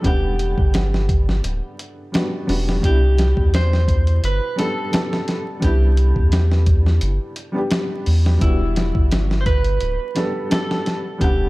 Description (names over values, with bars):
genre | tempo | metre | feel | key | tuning
trip hop | 86 BPM | 4/4 | swing 54% on 16ths | E minor | A4 = 440 Hz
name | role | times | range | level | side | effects
clean electric guitar | melody | 0.0-11.5 s | E4 to C5 | -26 LUFS | right 1 dB | vintage 12-bit sampler grit, tape echo
felt-muted upright piano | accompaniment | 0.0-11.5 s | B2 to F#5 | -26 LUFS | equal | tremolo, tape echo
round analog bass | bass | 0.0-11.5 s | D1 to E2 | -17 LUFS | equal | none
dusty soul sampler-style drum kit | drums | 0.0-11.4 s | hi-hat, kick drum, snare drum | -20 LUFS | equal | none
room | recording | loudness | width
little or no reverb | dark, warm production, vinyl crackle | -16 LUFS | side -20 dB against mid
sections
0.0-11.5 A section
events
none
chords
0.0 Em7; 2.8 Cmaj7; 8.4 Em7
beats
| 0.05 0.74 1.44 2.14 | 2.84 3.53 4.23 4.93 | 5.63 6.33 7.02 7.72 | 8.42 9.12 9.81 10.51 | 11.21